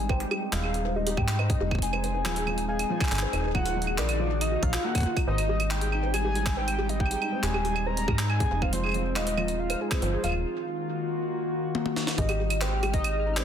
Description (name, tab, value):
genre	IDM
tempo	139 BPM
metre	4/4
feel	straight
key	Ab major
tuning	A4 = 439 Hz
part	warbly nostalgic lead	melody	0.0-13.4 s	Ab4 to Bb5	-32 LUFS	equal	chorus, ping-pong delay
part	warbly tape-like pad	sustained chords	0.0-13.4 s	Eb3 to Ab4	-33 LUFS	left 1 dB	chorus, built-in reverb, vintage 12-bit sampler grit, sidechain pumping
part	metallic FM bass	bass	0.0-13.4 s	Eb1 to Ab2	-29 LUFS	equal	none
part	pulsing gated texture	texture	0.0-13.4 s	Eb4 to F6	-41 LUFS	right 1 dB	chorus, built-in reverb
part	felt-muted upright piano	arpeggios	0.1-13.4 s	F3 to F5	-34 LUFS	equal	vintage 12-bit sampler grit, ping-pong delay
part	electronic kick drum	drums	0.1-13.0 s	none	-28 LUFS	equal	none
part	jungle sampler-style drum kit	drums	0.1-13.4 s	claves, handclaps, hi-hat, snare drum, toms	-32 LUFS	right 1 dB	soft clipping on snare
room	light reverb, digital ambience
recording	dense, heavily limited modern master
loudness	-25 LUFS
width	side -8 dB against mid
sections	0.0-12.2 A section; 12.2-13.4 B section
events	break 10.5-12.2; drum fill 11.7-12.2; band accent 12.1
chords	0.0 Abmaj7; 3.5 Ebmadd9; 5.3 Abmaj7; 10.5 Ebmadd9; 12.2 Abmaj7